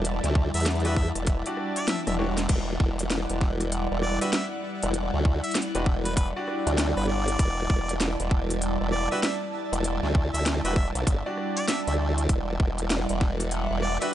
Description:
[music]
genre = glitch hop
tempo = 98 BPM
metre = 4/4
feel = swing 63% on 16ths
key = E minor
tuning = A4 = 440 Hz
[part]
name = warbly tape-like pad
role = sustained chords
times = 0.0-14.1 s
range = G3 to E5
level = -34 LUFS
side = left 1 dB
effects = chorus, built-in reverb, vintage 12-bit sampler grit, sidechain pumping
[part]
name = formant-sweep wobble bass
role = bass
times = 0.0-14.0 s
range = E1 to E2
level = -27 LUFS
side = equal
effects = chorus
[part]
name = drum and bass drum kit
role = drums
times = 0.0-14.1 s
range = crash cymbal, hi-hat, rim click, snare drum, toms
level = -30 LUFS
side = equal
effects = none
[part]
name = airy breathy pad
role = texture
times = 0.0-14.1 s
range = G3 to A5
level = -34 LUFS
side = right 3 dB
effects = chorus, phaser, sidechain pumping
[part]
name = electronic kick drum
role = drums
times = 0.4-13.4 s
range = none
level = -24 LUFS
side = equal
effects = none
[part]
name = bright harmonica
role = melody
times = 0.5-14.1 s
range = B4 to E5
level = -34 LUFS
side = equal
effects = digital delay
[part]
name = bright grand piano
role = stabs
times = 0.8-14.1 s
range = D4 to D5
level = -34 LUFS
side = equal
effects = sidechain pumping, digital delay
[sound]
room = light reverb, digital ambience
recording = nothing above 10.8 kHz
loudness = -24 LUFS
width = side -12 dB against mid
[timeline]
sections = 0.0-14.1 A section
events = drum fill 1.9-2.5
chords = 0.0 Em9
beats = | 0.05 0.66 1.27 1.88 | 2.50 3.11 3.72 4.33 | 4.95 5.56 6.17 6.78 | 7.39 8.01 8.62 9.23 | 9.84 10.46 11.07 11.68 | 12.29 12.90 13.52 14.13

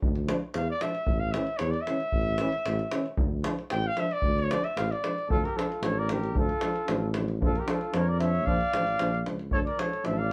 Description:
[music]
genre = balkan folk, Balkan brass band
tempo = 114 BPM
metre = 2/4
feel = straight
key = D harmonic minor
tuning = A4 = 436 Hz
[part]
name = mellow tuba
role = bass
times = 0.0-10.3 s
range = A1 to F2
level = -33 LUFS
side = equal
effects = none
[part]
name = davul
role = percussion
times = 0.0-10.2 s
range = none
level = -34 LUFS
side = equal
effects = none
[part]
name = growling trombone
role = accompaniment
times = 0.3-10.1 s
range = E3 to F3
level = -38 LUFS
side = equal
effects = none
[part]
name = mellow euphonium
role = accompaniment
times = 0.3-10.2 s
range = C#4 to D4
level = -39 LUFS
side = equal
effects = none
[part]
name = warm trumpet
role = second line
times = 0.5-10.3 s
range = F4 to G5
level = -35 LUFS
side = equal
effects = none
[part]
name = warm flugelhorn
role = melody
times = 5.3-10.3 s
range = A4 to F5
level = -32 LUFS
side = equal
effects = none
[sound]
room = moderate studio ambience, RT60 0.5 s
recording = band playing live in one room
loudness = -28 LUFS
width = mono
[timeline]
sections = 0.0-5.3 A section; 5.3-10.3 B section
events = trumpet solo 0.0-5.3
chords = 0.0 Dm; 1.1 A; 3.2 Dm; 7.4 Bb; 9.5 Dm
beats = | 0.03 0.56 | 1.08 1.61 | 2.14 2.66 | 3.19 3.72 | 4.24 4.77 | 5.30 5.83 | 6.35 6.88 | 7.41 7.94 | 8.46 8.99 | 9.52 10.05

